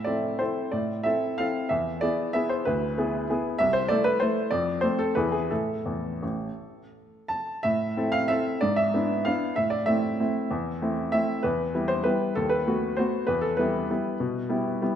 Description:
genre	classical, piano waltz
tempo	160-205 BPM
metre	3/4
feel	rubato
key	A minor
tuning	A4 = 440 Hz
part	clear upright piano	solo	0.0-15.0 s	A1 to A5	-24 LUFS	equal	none
room	moderate recital hall reverb, RT60 1.9 s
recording	none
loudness	-24 LUFS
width	side -9 dB against mid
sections	0.0-7.6 A section; 7.6-15.0 B section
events	none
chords	0.0 Am; 1.7 E; 2.7 E7/D; 3.6 Am/C; 4.5 F; 5.2 E; 5.5 A5; 7.6 Am; 8.6 E7/G#; 9.6 Am; 11.4 Em; 12.4 B7/D#; 13.3 Em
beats	0.07 0.40 | 0.73 1.05 1.38 | 1.70 2.02 2.35 | 2.67 2.98 3.30 | 3.60 3.90 4.21 | 4.51 4.82 5.16 | 5.50 5.85 6.22 | 6.58 6.93 7.29 | 7.64 7.97 8.29 | 8.62 8.93 9.26 | 9.57 9.87 10.19 | 10.51 10.81 11.13 | 11.43 11.73 12.05 | 12.36 12.66 12.98 | 13.28 13.58 13.89 | 14.19 14.49 14.81

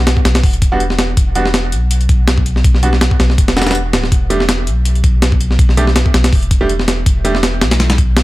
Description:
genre	drum and bass, jungle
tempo	163 BPM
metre	4/4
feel	swing 54% on 16ths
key	E minor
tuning	A4 = 440 Hz
part	soft dub sub bass	bass	0.0-8.2 s	D1 to B1	-15 LUFS	equal	none
part	breakbeat sampler-style drum kit	drums	0.1-8.2 s	hi-hat, kick drum, snare drum	-13 LUFS	equal	none
part	clear concert grand piano	stabs	0.7-7.3 s	G3 to G4	-20 LUFS	right 2 dB	dub echo
room	little or no reverb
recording	none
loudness	-11 LUFS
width	side -18 dB against mid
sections	0.0-8.2 A section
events	none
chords	0.0 E7(no3); 4.1 N.C.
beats	0.07 0.44 0.81 | 1.17 1.54 1.91 2.28 | 2.65 3.01 3.38 3.75 | 4.12 4.49 4.85 5.22 | 5.59 5.96 6.33 6.70 | 7.06 7.43 7.80 8.17

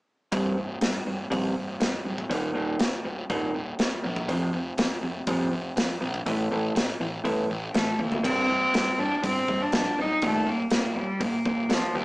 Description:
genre	quiet-loud alternative rock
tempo	121 BPM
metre	4/4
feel	straight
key	C dorian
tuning	A4 = 438 Hz
part	electric guitar through a small old amp	arpeggios	0.3-12.0 s	C2 to A3	-29 LUFS	equal	spring reverb
part	fuzz picked electric bass	bass	0.3-12.0 s	C1 to Eb2	-34 LUFS	equal	overdrive
part	big rock drum kit	drums	0.3-11.8 s	crash cymbal, hi-hat, kick drum, snare drum, toms	-28 LUFS	equal	none
part	rich cello	melody	7.7-12.0 s	F3 to Eb4	-25 LUFS	equal	slapback echo
room	light reverb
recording	rough rehearsal-room recording, tube saturation, small speaker sound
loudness	-24 LUFS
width	side -22 dB against mid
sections	0.3-8.2 A section; 8.2-12.0 B section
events	drum fill 8.0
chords	0.3 C5; 2.3 Eb5; 4.3 F5; 6.3 A5; 8.2 C5; 10.2 Eb5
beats	| 0.32 0.82 1.31 1.81 | 2.30 2.80 3.29 3.79 | 4.28 4.78 5.27 5.77 | 6.26 6.75 7.25 7.74 | 8.24 8.73 9.22 9.72 | 10.21 10.71 11.20 11.69

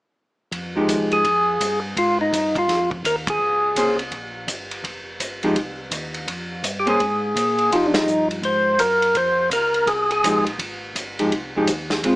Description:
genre	soul jazz organ trio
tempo	167 BPM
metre	4/4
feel	swing 63% on 8ths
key	F minor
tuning	A4 = 441 Hz
part	mellow tonewheel organ	bass	0.5-12.2 s	F1 to Bb2	-33 LUFS	equal	slow rotary speaker
part	vintage drum kit	drums	0.5-12.1 s	hi-hat, kick drum, ride cymbal, snare drum	-27 LUFS	equal	none
part	vintage hollow-body jazz guitar	accompaniment	0.8-1.2, 3.8-12.2 s	F3 to C5	-21 LUFS	equal	none
part	percussive tonewheel organ	melody	1.1-4.0, 6.8-10.4 s	D4 to C5	-18 LUFS	equal	slow rotary speaker, overdrive
room	moderate studio reverb, RT60 0.9 s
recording	small speaker sound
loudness	-18 LUFS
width	side -18 dB against mid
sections	0.5-12.2 A section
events	band accent 3.2, 7.9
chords	0.5 Fm9; 3.4 Bbm9; 4.8 F7sus2; 6.3 Bb7(no3); 7.7 Fm9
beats	| 0.52 0.88 1.24 1.60 | 1.96 2.32 2.68 3.04 | 3.40 3.76 4.12 4.48 | 4.84 5.20 5.56 5.92 | 6.28 6.64 7.00 7.36 | 7.72 8.08 8.44 8.80 | 9.16 9.52 9.88 10.24 | 10.60 10.96 11.32 11.68 | 12.04

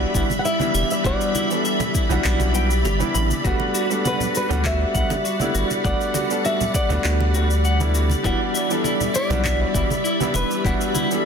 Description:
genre	sunset chillout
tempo	100 BPM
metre	4/4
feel	straight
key	unclear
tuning	A4 = 439 Hz
part	nylon-string guitar	melody	0.0-10.9 s	B4 to F#5	-27 LUFS	left 1 dB	ping-pong delay
part	clear concert grand piano	accompaniment	0.0-11.3 s	E3 to A4	-25 LUFS	right 2 dB	auto-pan, ping-pong delay
part	soft string machine	sustained chords	0.0-11.3 s	G3 to B5	-25 LUFS	equal	ensemble chorus
part	warm sub bass	bass	0.0-10.7 s	E1 to D2	-21 LUFS	equal	none
part	clean electric guitar	arpeggios	0.1-11.1 s	E4 to B5	-28 LUFS	left 2 dB	ping-pong delay
part	electronic cabasa and handclaps	drums	0.1-11.2 s	none	-30 LUFS	left 3 dB	none
part	electronic kick drum	drums	0.1-10.8 s	none	-25 LUFS	equal	none
part	congas	percussion	0.3-11.1 s	none	-30 LUFS	right 3 dB	none
room	light reverb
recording	dense, heavily limited modern master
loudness	-18 LUFS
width	side -6 dB against mid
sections	0.0-11.3 A section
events	none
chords	0.0 Em7; 3.4 Gmaj7; 8.2 Em7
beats	0.45 | 1.05 1.65 2.25 2.85 | 3.45 4.05 4.65 5.25 | 5.85 6.45 7.05 7.65 | 8.25 8.85 9.45 10.05 | 10.65 11.25

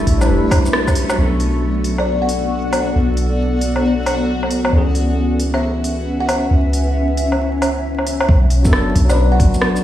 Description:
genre	future garage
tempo	135 BPM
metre	4/4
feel	swing 64% on 16ths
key	B minor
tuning	A4 = 440 Hz
part	tine electric piano	accompaniment	0.0-9.8 s	E3 to B4	-22 LUFS	left 1 dB	analog chorus, sidechain pumping, low-pass filter, analog delay
part	granular cloud pad	sustained chords	0.0-9.8 s	A3 to E5	-21 LUFS	equal	built-in reverb, vintage 12-bit sampler grit, sidechain pumping
part	soft 808-style bass	bass	0.0-9.5 s	E1 to C#2	-18 LUFS	equal	sidechain pumping
part	backwards swelling texture	texture	0.0-8.3 s	C#4 to C#6	-31 LUFS	left 2 dB	built-in reverb
part	deep house drum kit	drums	0.1-9.8 s	hi-hat, rim click, shaker, woodblock	-22 LUFS	equal	studio ambience
part	electronic kick drum	drums	0.1-0.9, 8.3-9.5 s	none	-16 LUFS	equal	studio ambience
part	buzzing kalimba	melody	2.0-2.5, 5.5-9.6 s	D5 to F#5	-26 LUFS	left 1 dB	analog delay
room	light reverb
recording	played on a big sound system in a bare room, stone room reverb, vinyl crackle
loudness	-14 LUFS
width	side -12 dB against mid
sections	0.0-1.2 A section; 1.2-8.3 B section; 8.3-9.8 C section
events	filter sweep on tine electric piano 0.0-1.2, 1.2-8.3; band accent 0.7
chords	0.0 A7sus4; 1.2 Bm7; 4.7 C#m7; 8.3 Bm7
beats	0.29 0.73 | 1.18 1.62 2.07 2.51 | 2.96 3.40 3.84 4.29 | 4.73 5.18 5.62 6.07 | 6.51 6.96 7.40 7.84 | 8.29 8.73 9.18 9.62

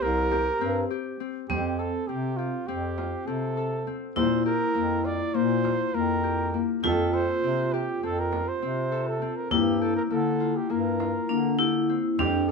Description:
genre	contemporary instrumental, chamber music in an uneven meter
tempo	202 BPM (eighths)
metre	9/8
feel	straight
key	F major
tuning	A4 = 440 Hz
part	warm flugelhorn	melody	0.0-12.5 s	F4 to D5	-29 LUFS	right 4 dB	none
part	vibraphone with hard mallets	second line	0.0-12.5 s	C4 to G4	-29 LUFS	right 2 dB	none
part	Celtic harp	arpeggios	0.0-12.5 s	Bb3 to A4	-29 LUFS	left 10 dB	none
part	warm bass clarinet	bass	0.0-12.5 s	C2 to D3	-31 LUFS	equal	none
part	frame drum	percussion	0.3-12.5 s	none	-35 LUFS	right 8 dB	none
room	moderate studio reverb, RT60 0.8 s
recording	none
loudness	-24 LUFS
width	side -4 dB against mid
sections	0.0-1.5 A section; 1.5-12.5 B section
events	none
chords	0.0 C5; 1.5 Fadd9; 4.2 Bb5; 6.8 Fadd9; 9.5 Gm7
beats	0.02 0.31 0.61 0.91 1.20 | 1.50 1.79 2.09 2.39 2.68 2.98 3.27 3.57 3.87 | 4.16 4.46 4.76 5.05 5.35 5.65 5.95 6.24 6.54 | 6.84 7.13 7.43 7.73 8.03 8.32 8.62 8.92 9.21 | 9.51 9.81 10.11 10.40 10.70 11.00 11.30 11.60 11.89 | 12.19 12.49

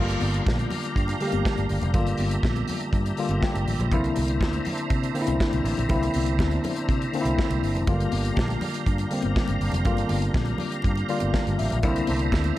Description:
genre	disco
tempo	121 BPM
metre	4/4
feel	straight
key	G dorian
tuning	A4 = 440 Hz
part	mellow tine electric piano	accompaniment	0.0-12.6 s	D3 to G5	-27 LUFS	left 2 dB	medium stereo tremolo
part	tonewheel organ	sustained chords	0.0-12.6 s	D4 to Bb5	-32 LUFS	right 2 dB	overdrive, chorus vibrato, slow rotary speaker
part	fingered electric bass	bass	0.0-12.5 s	F1 to C3	-27 LUFS	equal	none
part	modern studio drum kit	drums	0.1-12.6 s	hi-hat, kick drum, snare drum	-27 LUFS	equal	none
part	congas	percussion	0.1-12.6 s	none	-35 LUFS	left 1 dB	none
room	small room ambience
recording	dark, warm production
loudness	-22 LUFS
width	side -15 dB against mid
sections	0.0-12.6 A section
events	tine electric piano fill 3.2-3.9, 10.8-11.8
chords	0.0 Gm7; 3.9 C9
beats	0.46 0.96 1.45 | 1.95 2.44 2.94 3.43 | 3.92 4.42 4.91 5.41 | 5.90 6.39 6.89 7.38 | 7.88 8.37 8.87 9.36 | 9.85 10.35 10.84 11.34 | 11.83 12.32

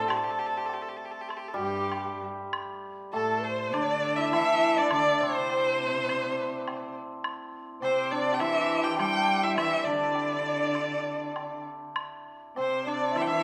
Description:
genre	chinese traditional, Chinese chamber ensemble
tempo	102 BPM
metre	4/4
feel	rubato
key	unclear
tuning	A4 = 440 Hz
part	bright erhu	melody	0.0-13.4 s	G4 to G5	-32 LUFS	equal	none
part	bright cello	second line	0.0-13.4 s	G2 to G3	-37 LUFS	equal	none
part	hammered dulcimer	second line	0.0-13.4 s	G3 to G4	-33 LUFS	equal	none
part	mellow large dizi	second line	0.0-13.4 s	G4 to A5	-34 LUFS	equal	none
part	woodblock	percussion	0.1-13.3 s	none	-39 LUFS	equal	none
room	moderate concert hall reverb, RT60 1.8 s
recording	none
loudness	-28 LUFS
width	mono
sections	0.0-2.5 A section; 2.5-13.4 B section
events	none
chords	none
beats	| 0.10 0.69 1.29 1.91 | 2.53 3.12 3.73 4.33 | 4.91 5.50 6.09 6.67 | 7.25 7.83 8.40 8.99 | 9.58 10.16 10.75 11.36 | 11.97 12.57 13.16

